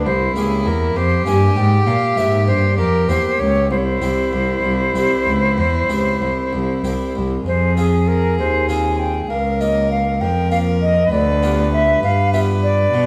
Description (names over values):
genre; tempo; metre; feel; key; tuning
classical, baroque-style sonata movement with continuo; 66 BPM (dotted quarters); 12/8; straight; unclear; A4 = 441 Hz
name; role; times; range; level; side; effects
bright concert flute; melody; 0.0-13.1 s; Ab4 to Ab5; -22 LUFS; equal; none
clear violin; second line; 0.0-13.1 s; E4 to B4; -27 LUFS; equal; none
harpsichord; accompaniment; 0.0-13.1 s; C2 to Ab4; -26 LUFS; equal; none
rich cello; bass; 0.0-13.1 s; C2 to B2; -21 LUFS; equal; none
room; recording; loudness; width
moderate recital hall reverb, RT60 1.4 s; none; -17 LUFS; mono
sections
0.0-13.1 A section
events
none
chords
0.1 C7; 3.7 C; 7.5 Fm; 9.3 Bbm/Db; 11.1 G7/D